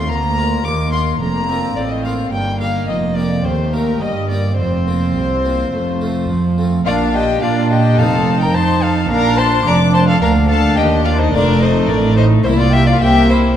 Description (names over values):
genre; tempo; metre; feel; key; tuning
classical, baroque-style concerto movement with solo episodes; 107 BPM; 4/4; straight; Bb major; A4 = 440 Hz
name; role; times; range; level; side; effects
rich violin; melody; 0.0-13.6 s; Bb4 to D6; -22 LUFS; left 2 dB; none
warm chamber violin section; melody; 0.0-13.4 s; D4 to D6; -24 LUFS; left 6 dB; none
rich chamber violin section; second line; 0.0-13.6 s; D4 to D6; -23 LUFS; left 4 dB; none
harpsichord; accompaniment; 0.0-13.5 s; C2 to G4; -22 LUFS; equal; none
warm chamber viola section; accompaniment; 0.0-13.6 s; G3 to Eb4; -21 LUFS; equal; none
dark studio double bass section; bass; 0.0-13.6 s; F1 to Bb2; -18 LUFS; right 2 dB; none
warm chamber cello section; bass; 0.0-13.6 s; C2 to Bb3; -21 LUFS; right 3 dB; none
room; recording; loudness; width
wet scoring stage reverb, RT60 1.8 s; dark, warm production; -13 LUFS; side -10 dB against mid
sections
0.0-6.9 A section; 6.9-13.6 B section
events
none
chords
0.1 Bb/D; 2.3 Eb/G; 3.4 Eb; 4.6 Fsus4; 5.7 F; 6.9 Bb; 8.0 F5; 9.1 Bb; 11.3 F; 12.5 C7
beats
| 0.09 0.65 1.21 1.76 | 2.32 2.88 3.44 4.01 | 4.58 5.15 5.72 6.29 | 6.86 7.42 7.98 8.54 | 9.10 9.66 10.22 10.79 | 11.35 11.91 12.46 13.02